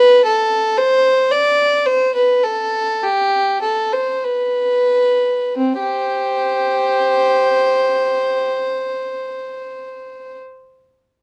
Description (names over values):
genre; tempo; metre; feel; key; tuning
classical, baroque-style suite movement for unaccompanied violin; 43-58 BPM; 3/4; rubato; unclear; A4 = 440 Hz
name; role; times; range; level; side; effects
warm violin; solo; 0.0-10.4 s; C4 to D5; -17 LUFS; equal; none
room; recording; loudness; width
light reverb; dark, warm production; -17 LUFS; mono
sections
0.0-5.6 A section; 5.6-9.6 B section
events
slowing down 0.0-5.6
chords
none